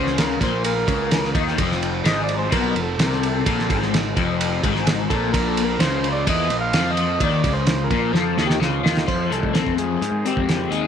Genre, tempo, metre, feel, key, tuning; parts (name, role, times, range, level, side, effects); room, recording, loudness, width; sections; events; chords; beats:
psychedelic rock; 128 BPM; 4/4; straight; F mixolydian; A4 = 440 Hz
combo organ; melody; 0.0-10.9 s; F4 to F5; -26 LUFS; right 2 dB; tape echo
hand-pumped harmonium; sustained chords; 0.0-10.9 s; Eb3 to A5; -32 LUFS; right 14 dB
crunchy overdriven guitar; riff; 0.0-10.9 s; F2 to Eb4; -23 LUFS; left 10 dB; phaser
fuzz picked electric bass; bass; 0.0-10.9 s; F1 to Ab2; -26 LUFS; right 2 dB; overdrive
cloth-damped thuddy drum kit; drums; 0.1-10.8 s; crash cymbal, hi-hat, kick drum, ride cymbal, snare drum; -23 LUFS; right 2 dB
light reverb; 1960s-style stereo with parts hard left and right; -18 LUFS; side -8 dB against mid
0.0-9.1 A section; 9.1-10.9 B section
transistor combo organ solo 0.0-9.1; drum fill 8.1-9.1
0.0 Bb5; 1.6 F; 5.3 Bb5; 9.1 F; 10.0 Ab
0.16 0.63 1.10 | 1.57 2.04 2.51 2.98 | 3.45 3.92 4.39 4.86 | 5.33 5.80 6.26 6.73 | 7.20 7.67 8.14 8.61 | 9.08 9.55 10.02 10.49